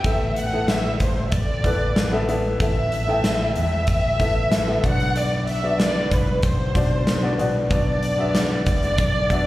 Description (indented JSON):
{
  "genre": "piano-driven pop",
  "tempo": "94 BPM",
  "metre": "4/4",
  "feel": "straight",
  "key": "unclear",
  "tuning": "A4 = 442 Hz",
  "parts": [
    { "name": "warm studio violin section", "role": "melody", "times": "0.0-9.5 s", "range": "B4 to F#5", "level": "-25 LUFS", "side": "equal", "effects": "slapback echo, digital delay" },
    { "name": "warm baby grand piano", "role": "accompaniment", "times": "0.0-9.5 s", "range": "A2 to G5", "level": "-26 LUFS", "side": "left 2 dB", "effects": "slapback echo" },
    { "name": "fingered electric bass", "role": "bass", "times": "0.0-9.5 s", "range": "F#1 to E2", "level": "-25 LUFS", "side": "equal", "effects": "none" },
    { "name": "huge arena drum kit", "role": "drums", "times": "0.0-9.4 s", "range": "hi-hat, kick drum, snare drum", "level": "-23 LUFS", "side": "equal", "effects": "none" }
  ],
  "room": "light reverb, small room ambience",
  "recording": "live gig heard through the venue's PA, club reverb",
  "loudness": "-18 LUFS",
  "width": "side -16 dB against mid",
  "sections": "0.0-9.5 A section",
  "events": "none",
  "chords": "0.0 Asus2; 4.8 Bm",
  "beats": "| 0.05 0.69 1.32 1.96 | 2.60 3.24 3.88 4.52 | 5.16 5.79 6.43 7.07 | 7.71 8.35 8.98"
}